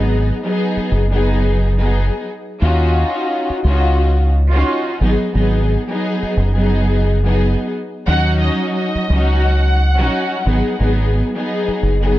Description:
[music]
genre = hip hop, boom-bap hip-hop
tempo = 88 BPM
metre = 4/4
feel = swing 57% on 16ths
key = unclear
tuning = A4 = 442 Hz
[part]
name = warm studio string section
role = accompaniment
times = 0.0-12.2 s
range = Gb3 to Ab4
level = -18 LUFS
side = left 1 dB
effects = cassette tape, high-pass filter, low-pass filter
[part]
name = deep dub fingered electric bass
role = bass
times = 0.0-12.2 s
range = Gb1 to Eb2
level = -15 LUFS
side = equal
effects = none
[part]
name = warm studio violin section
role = melody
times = 8.1-10.8 s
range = Eb5 to Gb5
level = -22 LUFS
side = equal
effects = high-pass filter, low-pass filter, slapback echo
[sound]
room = small room ambience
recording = none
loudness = -14 LUFS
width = side -15 dB against mid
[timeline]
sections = 0.0-12.2 A section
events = none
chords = 0.0 Abm7; 2.6 Ebm9; 5.0 Abm7; 8.1 Ebm7; 10.5 Abm7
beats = 0.57 1.25 1.93 | 2.61 3.29 3.98 4.66 | 5.34 6.02 6.71 7.39 | 8.07 8.75 9.43 10.11 | 10.79 11.48 12.16

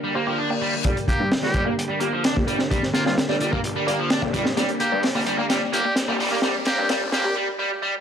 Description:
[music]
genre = breakbeat, breaks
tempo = 129 BPM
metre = 4/4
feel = straight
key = G minor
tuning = A4 = 441 Hz
[part]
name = lush unison pad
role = sustained chords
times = 0.0-7.3 s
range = D3 to Bb4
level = -31 LUFS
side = equal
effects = chorus, vintage 12-bit sampler grit, sidechain pumping
[part]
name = distorted electric guitar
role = riff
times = 0.0-7.9 s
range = F3 to D4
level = -26 LUFS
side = right 2 dB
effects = overdrive, tube saturation, low-pass filter, tape echo
[part]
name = reverse cymbal and riser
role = sound effects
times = 0.1-7.4 s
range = none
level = -35 LUFS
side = left 3 dB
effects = none
[part]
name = filtered dub chord stab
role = stabs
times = 0.2-7.3 s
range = Bb3 to D5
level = -28 LUFS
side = left 1 dB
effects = phaser, vintage 12-bit sampler grit, tape echo
[part]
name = phased detuned saw bass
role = bass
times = 0.8-7.3 s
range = G1 to G2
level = -30 LUFS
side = equal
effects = phaser, high-pass filter
[part]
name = crunchy breakbeat drum kit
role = drums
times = 0.8-7.2 s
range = hi-hat, kick drum, snare drum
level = -24 LUFS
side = equal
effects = none
[part]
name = trumpet with metal mute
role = melody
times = 1.1-7.3 s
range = F4 to G4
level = -28 LUFS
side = equal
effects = AM radio sound, tape echo
[sound]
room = moderate lush hall reverb, RT60 2.1 s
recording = dry, gritty hardware recording, high-pass filter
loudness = -20 LUFS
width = side -8 dB against mid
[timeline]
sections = 0.8-8.0 A section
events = reverse cymbal 0.1-0.8; build-up 0.8-8.0; filter sweep on synth stab 0.8-8.0; filter sweep 0.8-8.0; drum fill 4.6-7.4; break 7.4-8.0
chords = 0.0 Gm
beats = 0.39 | 0.85 1.31 1.78 2.25 | 2.71 3.18 3.64 4.11 | 4.57 5.04 5.50 5.97 | 6.43 6.90 7.36 7.83

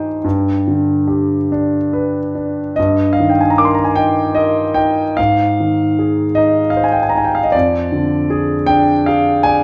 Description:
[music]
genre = classical, romantic nocturne for solo piano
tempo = 47-53 BPM (dotted quarters)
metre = 12/8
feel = rubato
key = unclear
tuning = A4 = 440 Hz
[part]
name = warm concert grand piano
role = solo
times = 0.0-9.6 s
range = F2 to D6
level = -15 LUFS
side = equal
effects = none
[sound]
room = wet recital hall reverb, RT60 1.5 s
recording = dark, warm production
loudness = -15 LUFS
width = mono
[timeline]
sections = 0.0-9.6 A section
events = none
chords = 0.2 G; 2.8 Eb/G; 5.2 Ab; 7.5 Ddim/F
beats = 0.24 1.51 | 2.77 3.97 5.18 6.38 | 7.54 8.69

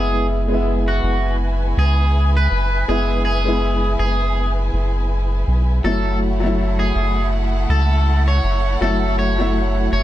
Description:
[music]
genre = trip hop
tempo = 81 BPM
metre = 4/4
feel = swing 55% on 16ths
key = unclear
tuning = A4 = 441 Hz
[part]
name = electric guitar at the edge of break-up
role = melody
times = 0.0-10.0 s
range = F#4 to C#5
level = -24 LUFS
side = right 1 dB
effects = wide subtle chorus, tape echo
[part]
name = bright upright piano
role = accompaniment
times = 0.0-10.0 s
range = F#3 to E4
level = -23 LUFS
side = left 1 dB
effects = harmonic tremolo, tape echo
[part]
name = rich studio violin section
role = sustained chords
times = 0.0-10.0 s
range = A3 to G#5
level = -29 LUFS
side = left 1 dB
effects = none
[part]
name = soft dub sub bass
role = bass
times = 0.0-10.0 s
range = F#1 to C#2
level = -18 LUFS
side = equal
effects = none
[sound]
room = small room ambience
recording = dark, warm production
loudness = -16 LUFS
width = side -13 dB against mid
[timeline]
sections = 0.0-10.0 A section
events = none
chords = 0.0 E/F#; 5.8 F#m7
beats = 0.66 1.40 2.14 | 2.88 3.62 4.37 5.11 | 5.85 6.59 7.33 8.07 | 8.81 9.55

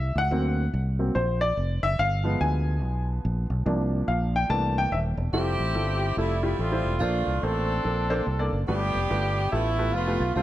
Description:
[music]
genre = uptempo gospel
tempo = 143 BPM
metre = 4/4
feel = swing 62% on 8ths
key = F major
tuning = A4 = 441 Hz
[part]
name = warm upright piano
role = accompaniment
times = 0.0-10.4 s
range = G2 to A5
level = -28 LUFS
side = left 1 dB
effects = none
[part]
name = fingered electric bass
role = bass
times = 0.0-10.4 s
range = Eb1 to D2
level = -26 LUFS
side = equal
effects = none
[part]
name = warm horn section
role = melody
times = 5.3-10.4 s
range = G3 to A4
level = -27 LUFS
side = right 1 dB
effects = none
[sound]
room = light reverb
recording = none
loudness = -23 LUFS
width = side -14 dB against mid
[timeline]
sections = 0.0-5.3 A section; 5.3-10.4 B section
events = upright piano solo 0.0-5.3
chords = 0.3 D7b13; 2.0 G7b9; 3.7 C7sus4; 4.5 C13; 5.3 Fmaj9; 7.0 Bbmaj9; 8.7 G9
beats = | 0.32 0.73 1.15 1.57 | 1.99 2.41 2.83 3.24 | 3.66 4.08 4.50 4.92 | 5.33 5.75 6.17 6.59 | 7.01 7.43 7.85 8.27 | 8.69 9.10 9.52 9.94 | 10.36

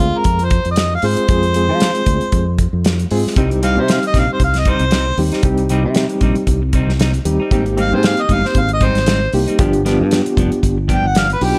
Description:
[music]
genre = straight-eighth soul blues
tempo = 116 BPM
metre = 4/4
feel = swing 55% on 16ths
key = C minor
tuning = A4 = 439 Hz
[part]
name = mellow harmonica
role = melody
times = 0.0-11.6 s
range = F4 to G5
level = -21 LUFS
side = equal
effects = overdrive
[part]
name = reed electric piano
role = accompaniment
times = 0.0-11.6 s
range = G3 to Ab4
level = -21 LUFS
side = equal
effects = medium tremolo
[part]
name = fingered electric bass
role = bass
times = 0.0-11.6 s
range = F1 to F3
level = -20 LUFS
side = equal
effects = none
[part]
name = warm soul drum kit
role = drums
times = 0.2-11.5 s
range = hi-hat, kick drum, snare drum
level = -20 LUFS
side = equal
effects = none
[part]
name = clean electric guitar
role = stabs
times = 3.4-11.6 s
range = G2 to Eb4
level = -25 LUFS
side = equal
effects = none
[sound]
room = light reverb, small room ambience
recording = none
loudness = -15 LUFS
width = mono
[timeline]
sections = 0.0-11.6 A section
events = none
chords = 0.0 Fm; 3.4 Cm; 7.5 Abmaj7; 9.6 G7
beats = 0.25 0.77 | 1.29 1.81 2.33 2.85 | 3.37 3.88 4.40 4.92 | 5.44 5.96 6.48 7.00 | 7.51 8.03 8.55 9.07 | 9.59 10.11 10.63 11.15

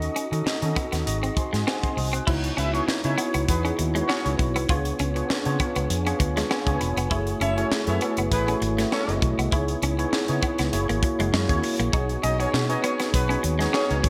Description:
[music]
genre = polished 1980s jazz-funk pop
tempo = 99 BPM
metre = 4/4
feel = swing 54% on 16ths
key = C# minor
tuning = A4 = 444 Hz
[part]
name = tine electric piano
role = accompaniment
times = 0.0-14.1 s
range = A3 to F#6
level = -29 LUFS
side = equal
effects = ensemble chorus
[part]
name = vintage muted fingered electric bass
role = bass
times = 0.0-14.1 s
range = E1 to D#3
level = -29 LUFS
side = equal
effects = none
[part]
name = tight funk drum kit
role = drums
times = 0.0-14.1 s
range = crash cymbal, hi-hat, kick drum, snare drum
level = -30 LUFS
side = equal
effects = gated reverb
[part]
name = clean electric guitar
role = riff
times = 0.2-14.1 s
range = G#3 to E#4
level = -34 LUFS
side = equal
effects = subtle chorus
[part]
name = warm horn section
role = second line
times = 2.6-14.0 s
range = B3 to E5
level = -32 LUFS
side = equal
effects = none
[sound]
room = moderate plate reverb, RT60 2.1 s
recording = bright 1980s-style digital production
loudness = -24 LUFS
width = mono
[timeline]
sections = 0.0-2.3 A section; 2.3-14.1 B section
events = tine electric piano fill 1.1-2.3, 5.3-7.1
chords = 0.0 D#m7b5; 1.1 G#7; 2.3 C#m11; 4.7 C#7b9; 7.1 F#m9; 9.5 C#m9; 10.7 F#9; 11.9 B69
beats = 0.46 1.07 1.67 | 2.28 2.88 3.49 4.09 | 4.70 5.30 5.90 6.51 | 7.11 7.71 8.32 8.92 | 9.52 10.13 10.73 11.33 | 11.93 12.54 13.14 13.74

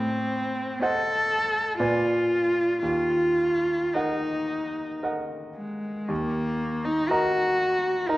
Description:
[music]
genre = classical, romantic duo for cello and grand piano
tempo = 54-63 BPM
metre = 3/4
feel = rubato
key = Eb minor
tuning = A4 = 440 Hz
[part]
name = rich cello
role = melody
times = 0.0-8.2 s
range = Ab3 to A4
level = -24 LUFS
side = equal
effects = none
[part]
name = bright grand piano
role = accompaniment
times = 0.0-8.2 s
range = Eb2 to Bb5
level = -29 LUFS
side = right 1 dB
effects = none
[sound]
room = moderate recital hall reverb, RT60 1.5 s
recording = worn, warbling old tape, cassette tape, warbly pitch drift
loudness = -23 LUFS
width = side -17 dB against mid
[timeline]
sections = 0.0-6.1 A section; 6.1-8.2 A section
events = none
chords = 0.0 Adim7; 1.8 Bb7b9; 2.8 Ebm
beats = 0.83 1.80 | 2.85 3.96 5.05 | 6.10 7.10 8.08

